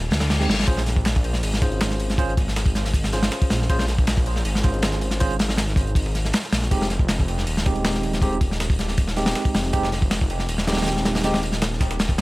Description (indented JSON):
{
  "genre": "drum and bass, jungle",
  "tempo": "159 BPM",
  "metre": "4/4",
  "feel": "straight",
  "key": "Bb minor",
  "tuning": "A4 = 439 Hz",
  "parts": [
    { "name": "detuned saw bass", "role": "bass", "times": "0.0-12.2 s", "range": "Eb1 to D2", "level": "-24 LUFS", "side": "equal", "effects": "none" },
    { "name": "reverse cymbal", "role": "sound effects", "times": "0.1-0.7 s", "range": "none", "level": "-30 LUFS", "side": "left 5 dB", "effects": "none" },
    { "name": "crunchy breakbeat drum kit", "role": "drums", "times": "0.1-12.2 s", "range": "hi-hat, kick drum, snare drum", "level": "-22 LUFS", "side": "equal", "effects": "none" },
    { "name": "tine electric piano", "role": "stabs", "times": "0.4-11.4 s", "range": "Ab3 to C5", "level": "-28 LUFS", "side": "right 2 dB", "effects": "medium stereo tremolo, vintage 12-bit sampler grit, dub echo" },
    { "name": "breakbeat sampler-style drum kit", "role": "drums", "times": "0.7-12.2 s", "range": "hi-hat, snare drum", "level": "-34 LUFS", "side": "right 1 dB", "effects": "high-pass filter on hats, high-pass filter on snare, high-pass filter on room" }
  ],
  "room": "studio reverb",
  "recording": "none",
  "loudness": "-19 LUFS",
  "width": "side -20 dB against mid",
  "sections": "0.0-12.2 A section",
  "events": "reverse cymbal 0.1-0.7",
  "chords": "0.0 Fm9 (rootless); 0.7 Bbm9; 6.7 Fm9"
}